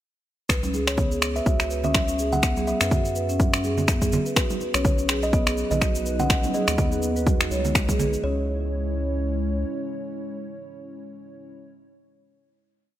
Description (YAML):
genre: afro house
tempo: 124 BPM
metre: 4/4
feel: swing 56% on 16ths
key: C# minor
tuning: A4 = 440 Hz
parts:
  - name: kalimba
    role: melody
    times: 0.5-11.5 s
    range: B4 to F#5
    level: -30 LUFS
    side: equal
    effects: tape echo
  - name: round analog bass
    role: bass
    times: 0.5-9.6 s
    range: B1 to F#2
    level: -28 LUFS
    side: equal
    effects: sidechain pumping
  - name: electronic finger snaps and shaker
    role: drums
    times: 0.5-8.2 s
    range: none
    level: -26 LUFS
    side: left 1 dB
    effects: overdrive, studio reverb
  - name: electronic kick drum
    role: drums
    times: 0.5-8.0 s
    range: none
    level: -23 LUFS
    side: equal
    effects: overdrive, studio reverb
  - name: marimba with soft mallets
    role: arpeggios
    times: 0.6-8.5 s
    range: G#3 to C#5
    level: -29 LUFS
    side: equal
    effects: sidechain pumping, low-pass filter, tape echo
  - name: congas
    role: percussion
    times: 0.6-8.1 s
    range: none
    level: -30 LUFS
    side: right 5 dB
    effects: none
  - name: dark analog pad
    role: sustained chords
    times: 4.4-11.5 s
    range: F#3 to C#5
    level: -32 LUFS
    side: equal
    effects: chorus, vintage 12-bit sampler grit, sidechain pumping
room: light reverb, small room ambience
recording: none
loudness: -21 LUFS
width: side -12 dB against mid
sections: 0.5-8.2 groove; 8.2-12.1 final chord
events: none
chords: 0.5 C#m; 4.4 B; 8.2 C#m